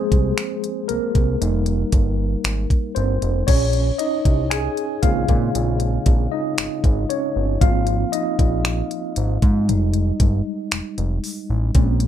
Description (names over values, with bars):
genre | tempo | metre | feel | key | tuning
contemporary R&B | 58 BPM | 4/4 | straight | Bb dorian | A4 = 440 Hz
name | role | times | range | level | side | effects
mellow tine electric piano | accompaniment | 0.0-12.1 s | Db3 to Ab5 | -23 LUFS | equal | medium stereo tremolo
fat analog bass | bass | 0.1-12.1 s | F1 to Bb2 | -21 LUFS | equal | none
trap drum kit | drums | 0.1-12.1 s | crash cymbal, finger snaps, hi-hat, kick drum | -19 LUFS | equal | none
room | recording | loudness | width
light reverb | none | -18 LUFS | side -10 dB against mid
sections
0.0-3.5 A section; 3.5-12.1 B section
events
tine electric piano solo 0.0-3.5, 3.5-12.1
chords
0.0 Ab6; 1.4 F7sus4; 3.5 Bbm9; 7.6 Ab6; 9.7 Fm9